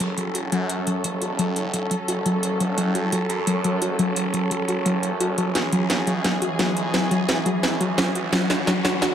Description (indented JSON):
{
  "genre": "dark technical drum and bass",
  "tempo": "173 BPM",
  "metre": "4/4",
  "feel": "straight",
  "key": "F# minor",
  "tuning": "A4 = 440 Hz",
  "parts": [
    { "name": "dark studio string section", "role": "sustained chords", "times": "0.0-9.1 s", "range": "E3 to A4", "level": "-26 LUFS", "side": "right 1 dB", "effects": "none" },
    { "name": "warbly dusty pluck", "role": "arpeggios", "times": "0.0-9.1 s", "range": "F#3 to F#4", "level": "-24 LUFS", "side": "left 1 dB", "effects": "chorus, digital delay" },
    { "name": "phased detuned saw bass", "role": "bass", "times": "0.0-9.1 s", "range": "E1 to F#2", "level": "-30 LUFS", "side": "right 1 dB", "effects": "phaser, overdrive, high-pass filter" },
    { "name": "drum and bass drum kit", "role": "drums", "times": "0.0-9.1 s", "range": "hi-hat, snare drum", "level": "-24 LUFS", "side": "right 1 dB", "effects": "none" },
    { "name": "riser", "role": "sound effects", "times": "7.5-9.1 s", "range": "none", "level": "-35 LUFS", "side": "left 1 dB", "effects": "none" }
  ],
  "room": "moderate digital room reverb, RT60 1.2 s, digital ambience",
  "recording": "none",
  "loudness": "-20 LUFS",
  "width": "side -9 dB against mid",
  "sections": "0.0-9.1 A section",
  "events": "build-up 0.0-9.1; filter sweep on synth arpeggio sound 0.0-9.1; drum fill 5.6-9.1",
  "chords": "0.0 F#m; 5.6 C#m"
}